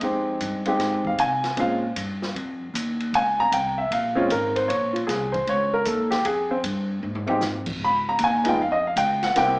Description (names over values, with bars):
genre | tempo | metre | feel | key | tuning
jazz piano trio | 154 BPM | 4/4 | swing 66% on 8ths | unclear | A4 = 440 Hz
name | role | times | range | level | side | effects
warm upright piano | melody | 0.0-9.6 s | Ab3 to Cb6 | -21 LUFS | equal | plate reverb, slapback echo
upright bass | bass | 0.0-9.6 s | Ab1 to C3 | -30 LUFS | equal | none
open jazz drum kit | drums | 0.0-9.5 s | crash cymbal, hi-hat, kick drum, ride cymbal, snare drum, toms | -32 LUFS | equal | none
room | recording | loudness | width
moderate club reverb, RT60 0.6 s | live gig heard through the venue's PA, club reverb, small speaker sound | -21 LUFS | side -27 dB against mid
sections
0.0-9.6 A section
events
upright piano solo 0.0-9.6; drum fill 7.0-7.4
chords
0.0 Fm7; 1.6 Bbm7; 6.3 Fm; 7.8 Db7